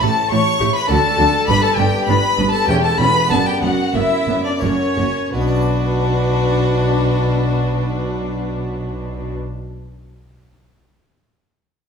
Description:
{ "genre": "classical, baroque-style concerto movement with solo episodes", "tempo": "83-104 BPM", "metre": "3/4", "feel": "straight", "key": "B minor", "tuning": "A4 = 440 Hz", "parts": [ { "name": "rich chamber violin section", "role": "melody", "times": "0.0-9.3 s", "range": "B4 to C#6", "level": "-23 LUFS", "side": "left 2 dB", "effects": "none" }, { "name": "rich violin", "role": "melody", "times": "0.0-9.3 s", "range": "F#4 to C#6", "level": "-22 LUFS", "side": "left 3 dB", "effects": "none" }, { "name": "rich chamber violin section", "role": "second line", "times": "0.0-9.3 s", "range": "C#4 to C#5", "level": "-24 LUFS", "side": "left 3 dB", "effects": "none" }, { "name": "harpsichord", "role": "accompaniment", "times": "0.0-9.6 s", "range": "E2 to D5", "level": "-24 LUFS", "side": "right 1 dB", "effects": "none" }, { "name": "rich chamber viola section", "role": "accompaniment", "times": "0.0-9.3 s", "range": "A#3 to G4", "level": "-26 LUFS", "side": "equal", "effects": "none" }, { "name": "clear chamber double bass section", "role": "bass", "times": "0.0-9.3 s", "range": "E1 to D2", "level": "-22 LUFS", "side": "right 2 dB", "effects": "none" }, { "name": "rich studio cello section", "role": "bass", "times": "0.0-9.3 s", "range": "E2 to D3", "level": "-23 LUFS", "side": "right 1 dB", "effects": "none" } ], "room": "wet recital hall reverb, RT60 1.5 s", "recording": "studio ambience", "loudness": "-15 LUFS", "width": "side -6 dB against mid", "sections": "0.0-5.3 A section; 5.3-9.7 B section", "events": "slowing down 0.6-5.3", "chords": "0.0 A5; 0.9 D; 1.5 G5; 2.7 C#m7b5/E; 3.3 Bm/F#; 4.6 F#7; 5.3 Bm" }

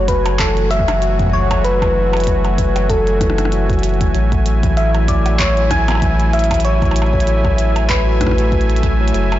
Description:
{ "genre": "IDM", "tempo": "96 BPM", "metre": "4/4", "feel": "swing 56% on 16ths", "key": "unclear", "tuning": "A4 = 441 Hz", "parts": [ { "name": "soft struck synth lead", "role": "melody", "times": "0.0-8.8 s", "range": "A4 to G#5", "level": "-20 LUFS", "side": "left 2 dB", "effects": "chorus, digital delay" }, { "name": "warm analog pad", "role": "sustained chords", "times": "0.0-9.4 s", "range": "A3 to G#5", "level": "-23 LUFS", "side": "right 2 dB", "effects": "chorus" }, { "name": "tine electric piano", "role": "arpeggios", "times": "0.0-9.3 s", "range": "E3 to F#4", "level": "-23 LUFS", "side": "left 2 dB", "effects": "phaser, tape echo" }, { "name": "warm sub bass", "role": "bass", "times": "0.0-9.4 s", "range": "F#1 to A1", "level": "-17 LUFS", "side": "equal", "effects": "none" }, { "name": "electronic kick drum", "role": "drums", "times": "0.1-9.0 s", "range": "none", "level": "-20 LUFS", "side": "equal", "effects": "none" }, { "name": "glitchy drum kit", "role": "drums", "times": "0.1-9.4 s", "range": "handclaps, hi-hat, percussion blips", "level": "-24 LUFS", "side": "equal", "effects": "none" } ], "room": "little or no reverb", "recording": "blown-out, overdriven recording, overdrive, nothing above 7.6 kHz", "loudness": "-13 LUFS", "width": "side -14 dB against mid", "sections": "0.0-9.4 A section", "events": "none", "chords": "0.0 F#m9; 4.1 Amaj7" }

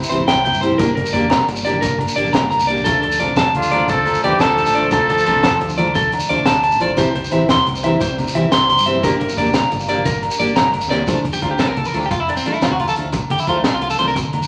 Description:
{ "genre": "highlife guitar band", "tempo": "117 BPM (dotted quarters)", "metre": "12/8", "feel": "straight", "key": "D minor", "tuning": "A4 = 440 Hz", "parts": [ { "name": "dark chamber string section", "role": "sustained chords", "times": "0.0-11.1 s", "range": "D3 to E4", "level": "-32 LUFS", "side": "equal", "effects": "none" }, { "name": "shekere", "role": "percussion", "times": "0.0-14.5 s", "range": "none", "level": "-30 LUFS", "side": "equal", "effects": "none" }, { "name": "picked steel-string acoustic guitar", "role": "accompaniment", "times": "0.1-14.1 s", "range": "E3 to A4", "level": "-24 LUFS", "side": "equal", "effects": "none" }, { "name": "electric guitar at the edge of break-up", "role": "arpeggios", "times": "0.1-14.2 s", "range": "A3 to C6", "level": "-21 LUFS", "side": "equal", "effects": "none" }, { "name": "fingered electric bass", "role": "bass", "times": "0.1-14.4 s", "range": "E1 to D3", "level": "-31 LUFS", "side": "equal", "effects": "none" }, { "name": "crunchy breakbeat drum kit", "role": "drums", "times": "0.1-14.4 s", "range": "hi-hat, kick drum, snare drum", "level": "-25 LUFS", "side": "equal", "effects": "none" }, { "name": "congas", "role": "percussion", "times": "0.2-14.5 s", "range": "none", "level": "-31 LUFS", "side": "equal", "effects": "none" }, { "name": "agogo bells", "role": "percussion", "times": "0.3-14.5 s", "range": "none", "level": "-29 LUFS", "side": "equal", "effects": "none" }, { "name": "clear trumpet", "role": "melody", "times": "3.6-5.9 s", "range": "F4 to A4", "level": "-20 LUFS", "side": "equal", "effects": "none" }, { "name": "growling tenor saxophone", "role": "second line", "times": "3.6-5.9 s", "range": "D3 to F3", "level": "-29 LUFS", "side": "equal", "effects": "none" } ], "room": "wet large studio reverb, RT60 1.3 s", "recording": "none", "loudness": "-17 LUFS", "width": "mono", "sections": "0.0-11.1 A section; 11.1-14.5 B section", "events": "drum fill 10.2-11.1; clean electric guitar solo 11.1-14.5", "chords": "0.0 C; 0.8 Gm; 2.9 Dm; 7.0 C; 9.0 Gm; 11.1 Dm" }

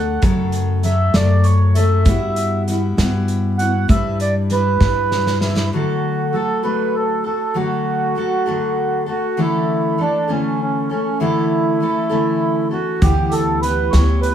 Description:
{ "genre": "acoustic folk duo or small band", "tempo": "66 BPM (dotted quarters)", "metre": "6/8", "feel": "straight", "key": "D major", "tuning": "A4 = 442 Hz", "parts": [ { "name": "mellow accordion", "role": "melody", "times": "0.0-14.3 s", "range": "C#4 to F#5", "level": "-20 LUFS", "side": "right 4 dB", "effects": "none" }, { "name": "picked steel-string acoustic guitar", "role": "accompaniment", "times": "0.0-14.3 s", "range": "F#2 to B4", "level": "-21 LUFS", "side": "left 2 dB", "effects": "none" }, { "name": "upright bass", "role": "bass", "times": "0.0-5.7, 13.0-14.3 s", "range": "D2 to G2", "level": "-17 LUFS", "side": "left 1 dB", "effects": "none" }, { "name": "loose indie drum kit", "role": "drums", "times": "0.2-5.7, 13.0-14.3 s", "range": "hi-hat, kick drum, snare drum", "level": "-21 LUFS", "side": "equal", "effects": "none" } ], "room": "wet studio reverb, RT60 0.6 s", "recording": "heard from further back in the room", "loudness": "-15 LUFS", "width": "side -9 dB against mid", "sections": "0.0-5.7 A section; 5.7-14.3 B section", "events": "accordion solo 0.0-5.7; drum fill 4.8-5.7", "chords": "0.2 F#m; 2.1 Emadd9/G; 3.9 G6; 5.7 D; 9.4 A/D; 13.0 Em/D" }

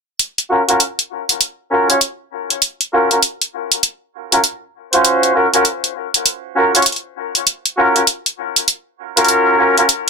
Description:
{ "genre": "glitch hop", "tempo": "99 BPM", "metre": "4/4", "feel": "swing 62% on 16ths", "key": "unclear", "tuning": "A4 = 439 Hz", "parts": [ { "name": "electronic hi-hat", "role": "drums", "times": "0.2-10.1 s", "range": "none", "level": "-14 LUFS", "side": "equal", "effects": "none" }, { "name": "warm horn section", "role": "stabs", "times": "0.5-9.8 s", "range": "Db4 to Db5", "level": "-14 LUFS", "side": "equal", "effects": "vintage 12-bit sampler grit, low-pass filter, ping-pong delay" } ], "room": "moderate small room reverb, RT60 0.5 s", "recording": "dense, heavily limited modern master", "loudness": "-13 LUFS", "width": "side -4 dB against mid", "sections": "0.2-10.1 A section", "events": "none", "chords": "0.2 Dbadd11" }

